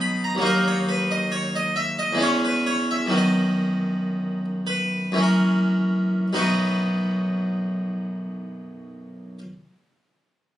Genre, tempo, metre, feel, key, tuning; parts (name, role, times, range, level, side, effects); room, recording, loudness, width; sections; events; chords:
classical, baroque-style suite movement for harpsichord; 51-70 BPM; 3/4; rubato; B major; A4 = 440 Hz
harpsichord; solo; 0.0-9.4 s; B1 to B5; -21 LUFS; equal
moderate large studio reverb, RT60 1.0 s; recorded on a phone in the room, studio reverb; -20 LUFS; side -12 dB against mid
0.0-6.3 A section; 6.3-9.8 B section
slowing down 0.0-6.3
0.4 D#m; 2.2 C#m/E; 3.1 B/F#; 5.2 F#7; 6.3 B